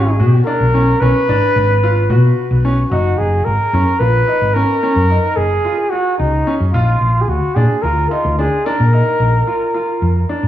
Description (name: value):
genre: progressive instrumental, band music in an uneven meter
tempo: 220 BPM (eighths)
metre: 7/8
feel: straight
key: F# major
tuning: A4 = 438 Hz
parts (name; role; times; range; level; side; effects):
- mellow trumpet; melody; 0.0-10.3 s; D#4 to B4; -17 LUFS; equal; plate reverb, digital delay
- clear grand piano; arpeggios; 0.0-10.5 s; C#4 to F#4; -21 LUFS; left 1 dB; digital delay
- hollow-body short-scale fingered electric bass; bass; 0.0-10.5 s; F#1 to B2; -14 LUFS; equal; none
room: moderate small room reverb, RT60 0.5 s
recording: worn, warbling old tape, cassette tape, warbly pitch drift, studio reverb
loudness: -12 LUFS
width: side -12 dB against mid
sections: 0.0-2.9 A section; 2.9-10.5 B section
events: none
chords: 0.0 Bmadd9; 2.9 F#sus2; 6.7 A#